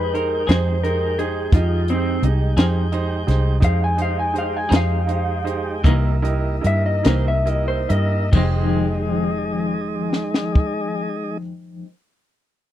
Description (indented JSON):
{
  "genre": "slow blues",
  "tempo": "45-58 BPM (dotted quarters)",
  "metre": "12/8",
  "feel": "straight",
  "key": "F minor",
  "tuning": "A4 = 440 Hz",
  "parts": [
    { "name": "electric guitar through a small old amp", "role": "melody", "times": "0.0-8.3 s", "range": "C4 to Ab5", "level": "-23 LUFS", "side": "left 1 dB", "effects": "vibrato effect" },
    { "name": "bright upright piano", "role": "accompaniment", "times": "0.0-11.4 s", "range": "Eb4 to Eb5", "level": "-28 LUFS", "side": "right 7 dB", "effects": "none" },
    { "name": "tonewheel organ", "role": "sustained chords", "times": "0.0-11.4 s", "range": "Ab3 to G5", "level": "-28 LUFS", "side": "equal", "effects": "slow rotary speaker" },
    { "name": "vintage muted fingered electric bass", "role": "bass", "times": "0.0-11.4 s", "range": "F1 to G2", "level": "-20 LUFS", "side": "equal", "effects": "none" },
    { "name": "compact cocktail drum kit", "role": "drums", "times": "0.1-10.8 s", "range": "crash cymbal, hi-hat, kick drum, snare drum", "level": "-17 LUFS", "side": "equal", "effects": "none" },
    { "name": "clean electric guitar", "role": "accompaniment", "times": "0.5-11.9 s", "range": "F2 to Ab4", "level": "-25 LUFS", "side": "left 3 dB", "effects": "tremolo" }
  ],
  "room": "little or no reverb",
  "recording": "dry, close 1970s-style studio recording",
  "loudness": "-18 LUFS",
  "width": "side -12 dB against mid",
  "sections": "0.0-8.3 A section; 8.3-12.7 B section",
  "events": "clean electric guitar solo 0.0-8.3; slowing down 2.2-8.3",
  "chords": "0.0 Fm7; 5.8 C7#9; 8.3 Fm7"
}